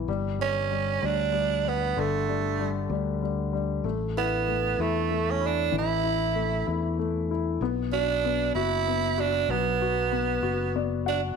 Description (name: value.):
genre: six-eight pop ballad.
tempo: 64 BPM (dotted quarters).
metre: 6/8.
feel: straight.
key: B minor.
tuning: A4 = 438 Hz.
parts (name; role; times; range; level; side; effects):
warm concert grand piano; accompaniment; 0.0-11.4 s; D3 to F#5; -30 LUFS; left 10 dB; none.
fingered electric bass; bass; 0.0-11.3 s; F#1 to E2; -31 LUFS; equal; none.
raspy tenor saxophone; melody; 0.4-11.2 s; A3 to E4; -26 LUFS; right 9 dB; none.
room: wet echo chamber reverb, RT60 1.2 s, studio reverb.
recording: 1960s-style stereo with parts hard left and right.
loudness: -24 LUFS.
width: side -6 dB against mid.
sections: 0.0-11.4 A section.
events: grand piano fill 10.4-11.4.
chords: 0.1 G5; 3.8 A5; 7.6 Bm.